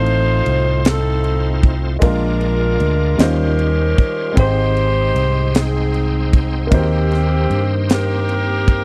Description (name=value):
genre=slow gospel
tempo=51 BPM (dotted quarters)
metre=6/8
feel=straight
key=Eb major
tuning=A4 = 442 Hz
part: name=clear saxophone section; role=melody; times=0.0-8.8 s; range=Bb3 to C5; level=-23 LUFS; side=equal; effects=none
part: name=warm concert grand piano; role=accompaniment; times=0.0-8.8 s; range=Ab2 to G5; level=-25 LUFS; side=equal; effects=none
part: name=bright tonewheel organ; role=sustained chords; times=0.0-8.8 s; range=G3 to G5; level=-29 LUFS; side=equal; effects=slow rotary speaker, overdrive, chorus vibrato
part: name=fingered electric bass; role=bass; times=0.0-8.8 s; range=Ab1 to G2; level=-20 LUFS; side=equal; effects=none
part: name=tight funk drum kit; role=drums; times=0.1-8.8 s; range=kick drum, ride cymbal, snare drum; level=-16 LUFS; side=equal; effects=none
room=little or no reverb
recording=dry, close 1970s-style studio recording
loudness=-17 LUFS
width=mono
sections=0.0-8.8 A section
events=none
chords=0.0 F7/A; 2.0 Bb7; 3.2 Eb13; 4.4 Abmaj7; 6.7 Eb6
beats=0.85 | 2.02 3.19 | 4.37 5.54 | 6.72 7.89